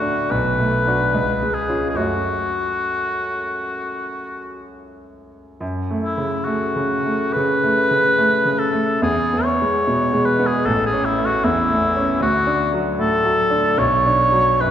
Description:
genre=classical, romantic duo for oboe and grand piano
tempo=65-78 BPM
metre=4/4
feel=rubato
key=F# minor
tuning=A4 = 440 Hz
part: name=warm oboe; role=melody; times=0.0-14.7 s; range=E4 to C#5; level=-19 LUFS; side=left 1 dB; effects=none
part: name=bright concert grand piano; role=accompaniment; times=0.0-14.7 s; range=A1 to F#4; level=-21 LUFS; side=right 1 dB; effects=none
room=wet concert hall reverb, RT60 2.0 s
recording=heard from further back in the room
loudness=-16 LUFS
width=side -10 dB against mid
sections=0.0-5.6 A section; 5.6-14.7 A section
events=none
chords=0.3 Bm7; 1.1 C#7; 2.0 F#m; 9.0 E; 10.7 A; 12.2 D; 13.8 Bm

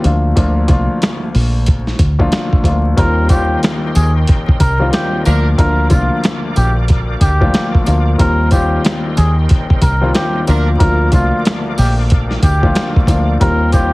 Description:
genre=hip hop, boom-bap hip-hop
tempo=92 BPM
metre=4/4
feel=swing 61% on 16ths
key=Eb major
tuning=A4 = 441 Hz
part: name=dark grand piano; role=accompaniment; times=0.0-13.9 s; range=D2 to F4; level=-18 LUFS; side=left 2 dB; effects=high-pass filter, low-pass filter
part: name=deep dub fingered electric bass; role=bass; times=0.0-13.9 s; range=Bb1 to Eb2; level=-14 LUFS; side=equal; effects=none
part: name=dusty soul sampler-style drum kit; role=drums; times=0.0-13.9 s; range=hi-hat, kick drum, snare drum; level=-14 LUFS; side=equal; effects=none
part: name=trumpet with cup mute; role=melody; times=3.0-13.9 s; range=F4 to Bb4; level=-20 LUFS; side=equal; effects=high-pass filter, low-pass filter, analog delay
part: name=bright tonewheel organ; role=sustained chords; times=3.0-13.9 s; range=Bb4 to D6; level=-29 LUFS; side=equal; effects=overdrive, chorus vibrato, fast rotary speaker, high-pass filter, low-pass filter
part: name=tambourine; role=percussion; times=3.3-13.9 s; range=none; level=-33 LUFS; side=right 2 dB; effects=none
part: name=clear horn section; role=stabs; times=5.3-5.5, 10.5-10.7 s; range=F3 to Bb4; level=-25 LUFS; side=right 1 dB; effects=high-pass filter, low-pass filter, analog delay
room=little or no reverb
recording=heavily compressed radio sound, multiband compression, vinyl crackle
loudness=-11 LUFS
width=side -21 dB against mid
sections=0.0-3.0 A section; 3.0-13.9 B section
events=none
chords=0.0 Bb; 3.0 Eb6; 5.3 Bb; 8.2 Eb6; 10.5 Bb; 13.4 Eb6

